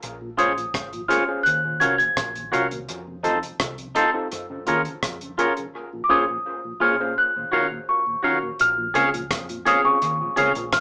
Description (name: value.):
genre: lovers rock reggae.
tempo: 84 BPM.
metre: 4/4.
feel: straight.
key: Bb minor.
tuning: A4 = 440 Hz.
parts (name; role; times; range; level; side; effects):
vintage muted fingered electric bass; bass; 0.0-10.8 s; Ab1 to Gb2; -37 LUFS; equal; none.
deep reggae drum kit; drums; 0.0-10.8 s; hi-hat, kick drum, rim click; -29 LUFS; equal; dub echo.
mellow tonewheel organ; accompaniment; 0.2-10.7 s; Eb2 to Ab4; -35 LUFS; equal; overdrive, chorus vibrato, slow rotary speaker, dub echo.
worn celesta; melody; 0.4-10.8 s; Db6 to Ab6; -21 LUFS; equal; none.
overdriven tine electric piano; accompaniment; 0.4-10.5 s; Bb2 to C5; -28 LUFS; equal; dub echo.
twangy electric guitar; stabs; 0.4-10.5 s; Eb4 to F5; -21 LUFS; equal; none.
room: wet small room reverb, RT60 0.5 s.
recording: band playing live in one room, small speaker sound.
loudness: -19 LUFS.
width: side -30 dB against mid.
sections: 0.0-8.6 A section; 8.6-10.8 B section.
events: none.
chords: 0.0 Bbm7; 1.4 Ebm9; 2.9 F7; 4.3 Gbmaj7; 5.7 Bbm7; 7.2 Ebm9; 8.6 Bbm7.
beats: | 0.02 0.73 1.45 2.16 | 2.88 3.59 4.31 5.02 | 5.74 6.45 7.17 7.88 | 8.59 9.31 10.02 10.73.